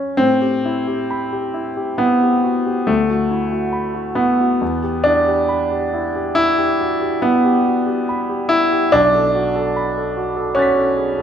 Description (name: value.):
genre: classical, impressionist solo piano.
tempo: 62-75 BPM.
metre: 5/4.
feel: rubato.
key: A dorian.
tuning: A4 = 440 Hz.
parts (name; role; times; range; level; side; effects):
clear grand piano; solo; 0.0-11.2 s; B1 to B6; -15 LUFS; equal; none.
room: wet scoring stage reverb, RT60 1.9 s.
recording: nothing above 10.9 kHz.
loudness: -15 LUFS.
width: side -8 dB against mid.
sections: 0.2-11.2 A section.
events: none.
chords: 0.2 Am9; 2.9 D69; 4.6 Em7; 8.9 Bm7.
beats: | 0.18 1.10 1.99 2.88 3.73 | 4.61 5.49 6.36 7.23 8.08 | 8.92 9.76 10.57.